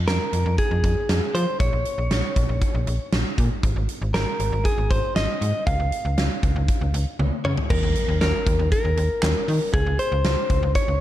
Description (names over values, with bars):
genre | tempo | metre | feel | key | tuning
synth-pop | 118 BPM | 4/4 | straight | unclear | A4 = 441 Hz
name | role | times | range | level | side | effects
slap-like FM bass | bass | 0.0-11.0 s | Ab1 to F3 | -23 LUFS | equal | none
direct-recorded clean electric guitar | melody | 0.1-11.0 s | Ab4 to F5 | -26 LUFS | left 1 dB | ping-pong delay
huge arena drum kit | drums | 0.1-10.9 s | crash cymbal, handclaps, hi-hat, kick drum, snare drum, toms | -24 LUFS | equal | none
impact | sound effects | 7.7-9.7 s | none | -31 LUFS | equal | none
room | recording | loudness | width
light reverb, small room ambience | dark, warm production | -20 LUFS | side -13 dB against mid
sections
0.0-7.7 A section; 7.7-11.0 B section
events
drum fill 7.2-7.7; impact 7.7-9.7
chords
0.0 Fm; 1.6 Bbm; 3.6 Ab5; 5.7 Db; 7.7 Eb5; 9.7 N.C.